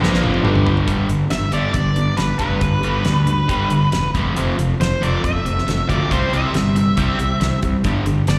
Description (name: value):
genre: classic rock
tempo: 138 BPM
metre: 4/4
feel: straight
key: G mixolydian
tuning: A4 = 440 Hz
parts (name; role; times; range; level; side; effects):
- dark upright piano; accompaniment; 0.0-0.9 s; D4 to B5; -30 LUFS; equal; plate reverb, slapback echo
- string machine, cellos; sustained chords; 0.0-8.4 s; D4 to C5; -35 LUFS; equal; none
- overdriven semi-hollow guitar; riff; 0.0-8.4 s; F2 to C4; -23 LUFS; equal; slapback echo
- sludgy distorted guitar; riff; 0.0-0.9 s; F2 to Bb3; -26 LUFS; equal; none
- fuzz fingered electric bass; bass; 0.0-8.4 s; E1 to D2; -23 LUFS; equal; overdrive
- damped 70s drum kit; drums; 0.0-8.4 s; hi-hat, kick drum, snare drum, toms; -26 LUFS; equal; none
- octave-fuzz lead guitar; melody; 1.3-8.4 s; B4 to E5; -25 LUFS; equal; distortion, slapback echo, plate reverb
room: light reverb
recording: live gig heard through the venue's PA, recital hall reverb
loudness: -18 LUFS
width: mono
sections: 0.9-8.4 A section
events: upright piano fill 0.0-0.9; drum fill 0.0-0.9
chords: 0.0 G; 4.1 F; 6.1 C; 7.8 G